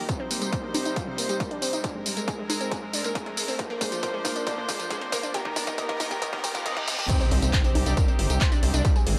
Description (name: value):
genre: uplifting trance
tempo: 137 BPM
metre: 4/4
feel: straight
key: C minor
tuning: A4 = 440 Hz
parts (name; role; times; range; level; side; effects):
- rich chamber string section; sustained chords; 0.0-9.2 s; Eb2 to C5; -35 LUFS; equal; sidechain pumping
- analog pluck; arpeggios; 0.0-9.1 s; Ab2 to Eb5; -34 LUFS; equal; chorus, sidechain pumping, dub echo
- riser, reverse cymbal and impact; sound effects; 0.0-8.8 s; none; -38 LUFS; equal; none
- electronic kick drum; drums; 0.1-8.9 s; none; -30 LUFS; equal; distortion, overdrive
- punchy analog drum machine; drums; 0.1-9.2 s; congas, crash cymbal, handclaps, hi-hat, tambourine; -33 LUFS; equal; none
- gritty driven synth bass; bass; 7.3-9.2 s; G1 to C2; -26 LUFS; equal; sidechain pumping
room: light reverb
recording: high-pass filter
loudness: -26 LUFS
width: mono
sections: 0.0-7.1 A section; 7.1-9.2 B section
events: build-up 0.0-7.1; filter sweep on synth pluck 0.0-7.1; drum fill 0.1-7.1; reverse cymbal 6.2-7.1; drop 7.1-9.2; impact 7.1-8.8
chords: 0.1 Cm; 1.8 Abadd9; 3.6 Bbadd9; 5.3 Eb; 7.1 Cm